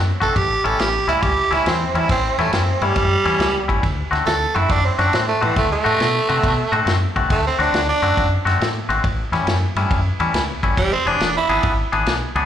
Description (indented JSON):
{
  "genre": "electric blues shuffle",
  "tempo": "138 BPM",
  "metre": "4/4",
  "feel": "swing 67% on 8ths",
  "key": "unclear",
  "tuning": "A4 = 440 Hz",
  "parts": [
    { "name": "deep dub fingered electric bass", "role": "bass", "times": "0.0-12.5 s", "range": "E1 to C3", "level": "-22 LUFS", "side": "equal", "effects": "none" },
    { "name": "growling tenor saxophone", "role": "second line", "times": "0.2-11.8 s", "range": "E3 to A4", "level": "-20 LUFS", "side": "right 3 dB", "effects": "slapback echo" },
    { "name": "twangy electric guitar", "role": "riff", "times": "0.2-12.5 s", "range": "A2 to G#4", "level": "-22 LUFS", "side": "left 4 dB", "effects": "wide subtle chorus, slapback echo" },
    { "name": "vintage drum kit", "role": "drums", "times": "0.2-12.4 s", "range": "kick drum, ride cymbal, snare drum", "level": "-24 LUFS", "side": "equal", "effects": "none" }
  ],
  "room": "light reverb, small room ambience",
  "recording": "live gig heard through the venue's PA, club reverb, faint mains hum",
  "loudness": "-16 LUFS",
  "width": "side -10 dB against mid",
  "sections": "0.0-12.5 A section",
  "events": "tenor saxophone solo 0.0-12.5",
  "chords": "0.4 A7; 3.8 D7; 9.0 A7; 10.8 E7",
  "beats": "| 0.36 0.80 1.23 1.66 | 2.10 2.53 2.97 3.40 | 3.83 4.27 4.70 5.14 | 5.57 6.00 6.44 6.87 | 7.30 7.74 8.17 8.60 | 9.04 9.47 9.90 10.34 | 10.77 11.20 11.64 12.07"
}